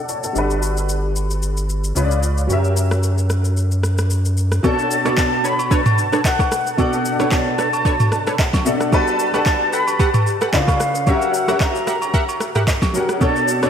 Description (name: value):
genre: amapiano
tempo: 112 BPM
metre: 4/4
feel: swing 55% on 16ths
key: B minor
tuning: A4 = 445 Hz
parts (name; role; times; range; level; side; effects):
- clear grand piano; accompaniment; 0.0-13.7 s; B2 to A5; -21 LUFS; left 1 dB; ensemble chorus, low-pass filter
- smooth R&B drum kit; drums; 0.1-13.7 s; handclaps, kick drum, rim click, shaker, snare drum, toms; -20 LUFS; equal; overdrive
- saturated sub bass; bass; 0.4-4.6 s; G1 to F#2; -18 LUFS; equal; none
- mellow concert flute; melody; 4.6-13.7 s; E#5 to B5; -21 LUFS; left 1 dB; analog delay
- agogo bells and woodblock; percussion; 4.6-13.7 s; none; -29 LUFS; right 5 dB; none
- punchy chord stab; stabs; 5.1-13.7 s; D4 to F#5; -24 LUFS; right 2 dB; chorus, analog delay
room: wet lush hall reverb, RT60 2.1 s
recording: dreamy mix soaked in reverb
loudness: -16 LUFS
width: side -8 dB against mid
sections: 0.0-4.6 A section; 4.6-13.7 B section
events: grand piano fill 0.0-0.4, 7.9-8.9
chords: 0.4 Gmaj9; 2.0 C#7b9; 2.5 F#7b9; 4.6 Bm9; 8.9 Gmaj9; 10.5 C#7b9; 11.1 F#7b9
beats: | 0.35 0.89 1.43 1.96 | 2.50 3.03 3.57 4.11 | 4.64 5.18 5.71 6.25 | 6.78 7.32 7.86 8.39 | 8.93 9.46 10.00 10.53 | 11.07 11.61 12.14 12.68 | 13.21